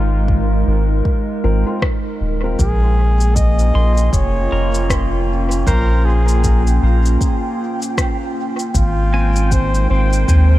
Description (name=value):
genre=ambient dub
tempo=78 BPM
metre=4/4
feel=swing 59% on 16ths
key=Bb dorian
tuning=A4 = 439 Hz
part: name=trumpet with bucket mute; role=melody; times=0.0-10.6 s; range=F4 to Eb5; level=-25 LUFS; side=equal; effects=dub echo
part: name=warbly tape-like pad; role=sustained chords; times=0.0-10.6 s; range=Ab3 to Bb4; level=-23 LUFS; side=equal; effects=chorus, built-in reverb, vintage 12-bit sampler grit
part: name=soft dub sub bass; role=bass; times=0.0-10.6 s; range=Eb1 to Eb2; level=-14 LUFS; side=equal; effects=none
part: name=electronic kick drum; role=drums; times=0.3-10.5 s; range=none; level=-19 LUFS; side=equal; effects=none
part: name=dark upright piano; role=stabs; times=1.4-2.6 s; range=C4 to Bb4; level=-29 LUFS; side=left 2 dB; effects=dub echo
part: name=electronic rim click and cabasa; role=drums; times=1.8-10.5 s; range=none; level=-27 LUFS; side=left 1 dB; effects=dub echo
part: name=bubbling stepped-filter texture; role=texture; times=3.1-10.6 s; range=G5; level=-29 LUFS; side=right 4 dB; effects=chorus, built-in reverb
part: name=pedal steel guitar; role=arpeggios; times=3.8-10.6 s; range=C4 to C6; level=-28 LUFS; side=right 1 dB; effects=dub echo
room=digital ambience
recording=none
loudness=-14 LUFS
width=side -15 dB against mid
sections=0.0-10.6 A section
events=none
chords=0.0 Ab6; 2.6 Bbm7; 8.7 Ab6